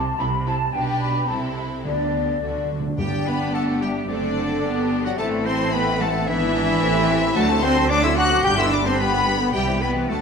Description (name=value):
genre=quick classical-period movement for symphony orchestra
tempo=110 BPM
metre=2/4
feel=straight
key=G major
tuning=A4 = 440 Hz
part: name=mellow hollow flute section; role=second line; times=0.0-10.2 s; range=A4 to D6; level=-27 LUFS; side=left 2 dB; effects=none
part: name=clear studio cello section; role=bass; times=0.0-10.1 s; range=B2 to G4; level=-27 LUFS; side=right 1 dB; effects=none
part: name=warm studio double bass section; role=bass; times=0.0-10.2 s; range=F#1 to D2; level=-28 LUFS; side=right 4 dB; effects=none
part: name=clear studio violin section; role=melody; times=0.2-10.2 s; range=F#4 to G6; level=-27 LUFS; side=left 4 dB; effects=none
part: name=rich studio violin section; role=second line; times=0.2-10.2 s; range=B3 to B4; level=-30 LUFS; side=left 1 dB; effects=none
part: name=rich studio viola section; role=accompaniment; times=0.2-10.2 s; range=D3 to D4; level=-27 LUFS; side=right 1 dB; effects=none
part: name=timpani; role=percussion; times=1.9-3.8 s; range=G2 to D3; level=-29 LUFS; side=right 1 dB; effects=none
part: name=bright oboe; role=second line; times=3.0-10.2 s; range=D4 to G5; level=-30 LUFS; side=right 1 dB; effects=none
part: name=dark clarinet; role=second line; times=3.0-10.2 s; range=D4 to G5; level=-30 LUFS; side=left 1 dB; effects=none
part: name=warm French horn section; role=sustained chords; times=3.0-10.2 s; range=D3 to G4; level=-28 LUFS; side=left 3 dB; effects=none
room=wet scoring stage reverb, RT60 2.0 s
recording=none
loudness=-18 LUFS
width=side -6 dB against mid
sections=0.0-3.0 A section; 3.0-10.2 B section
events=timpani fill 2.4-3.0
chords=0.0 Am/C; 0.7 G/B; 1.3 Am/C; 1.9 G/D; 2.4 D; 3.0 G; 4.1 D7/F#; 4.6 G; 5.2 Am; 6.3 E7/G#; 6.8 Am7; 7.4 D7; 8.4 G; 9.5 C